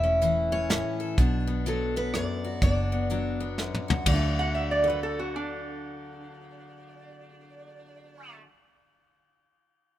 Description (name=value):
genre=honky-tonk and classic country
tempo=125 BPM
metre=3/4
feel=swing 61% on 8ths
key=D major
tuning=A4 = 440 Hz
part: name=picked steel-string acoustic guitar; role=melody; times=0.0-8.4 s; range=A4 to E5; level=-30 LUFS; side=equal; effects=none
part: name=picked steel-string acoustic guitar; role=accompaniment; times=0.0-8.5 s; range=F#2 to F#5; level=-32 LUFS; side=left 3 dB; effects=none
part: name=vintage muted fingered electric bass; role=bass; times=0.0-8.4 s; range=E1 to D2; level=-29 LUFS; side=equal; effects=none
part: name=soft brush drum kit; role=drums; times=0.2-4.2 s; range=hi-hat, kick drum, ride cymbal, rim click, snare drum, toms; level=-28 LUFS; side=equal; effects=none
part: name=lap resonator guitar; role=second line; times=4.4-8.4 s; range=D4 to F#5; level=-30 LUFS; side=right 2 dB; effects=none
room=light reverb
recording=minimal, uncompressed stereo recording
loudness=-24 LUFS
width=side -13 dB against mid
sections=0.0-4.1 A section; 4.1-6.9 B section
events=drum fill 3.6-4.1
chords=0.0 A; 1.2 Bm; 4.1 D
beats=0.22 0.70 | 1.18 1.66 2.14 | 2.62 3.10 3.58 | 4.07 4.55 5.03 | 5.51 5.99 6.47